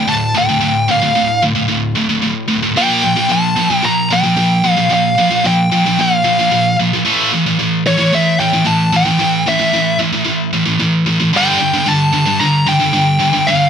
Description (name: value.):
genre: metal.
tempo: 112 BPM.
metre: 4/4.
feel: straight.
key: D minor.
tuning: A4 = 440 Hz.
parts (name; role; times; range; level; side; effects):
high-gain lead guitar; melody; 0.0-13.7 s; C#5 to Bb5; -15 LUFS; left 1 dB; distortion.
scooped high-gain guitar; riff; 0.0-13.7 s; D2 to Bb3; -13 LUFS; right 1 dB; distortion.
room: light reverb.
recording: none.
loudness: -11 LUFS.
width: side -8 dB against mid.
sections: 0.0-13.7 A section.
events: half time 0.0-13.7.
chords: 0.0 D5; 2.8 Bb5; 7.1 A5; 11.3 G5.